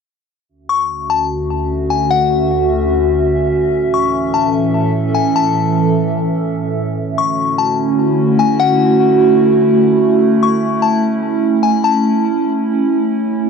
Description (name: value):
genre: hip hop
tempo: 148 BPM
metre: 4/4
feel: half-time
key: unclear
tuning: A4 = 440 Hz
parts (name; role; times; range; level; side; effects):
- warbly tape-like pad; sustained chords; 1.0-13.5 s; D2 to E5; -13 LUFS; right 2 dB; chorus, built-in reverb, phaser, cassette tape
- delicate synth tine bell; melody; 0.7-13.0 s; F#5 to C#6; -18 LUFS; left 8 dB; chorus, analog delay
room: wet booth ambience, RT60 0.2 s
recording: home recording on cassette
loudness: -12 LUFS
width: side -6 dB against mid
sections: 0.5-7.0 A section; 7.0-13.5 B section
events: none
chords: 0.5 Dmaj7; 3.7 A; 7.0 Dmaj7; 10.2 A